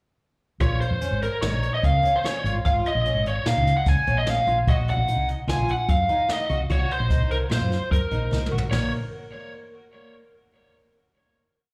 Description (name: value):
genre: progressive instrumental, band music in an uneven meter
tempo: 148 BPM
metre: 5/4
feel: straight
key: Bb minor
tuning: A4 = 439 Hz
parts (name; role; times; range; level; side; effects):
- lead guitar through a small cranked amp; melody; 0.6-8.9 s; Bb4 to Ab5; -27 LUFS; equal; overdrive, slapback echo, digital delay
- fingerpicked twelve-string acoustic guitar; arpeggios; 0.6-8.9 s; Bb3 to Gb4; -35 LUFS; equal; slapback echo, digital delay
- woody fretless electric bass; bass; 0.6-8.9 s; Ab1 to Bb2; -27 LUFS; equal; none
- jazz brush drum kit; drums; 0.6-8.8 s; hi-hat, kick drum, snare drum, toms; -29 LUFS; equal; none
room: light reverb, small room reverb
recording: live gig heard through the venue's PA, club reverb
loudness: -23 LUFS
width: mono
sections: 0.6-8.7 A section; 8.7-10.8 final chord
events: drum fill 8.3-8.7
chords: 0.6 Bbm7; 4.7 Ebm/Bb; 8.7 N.C.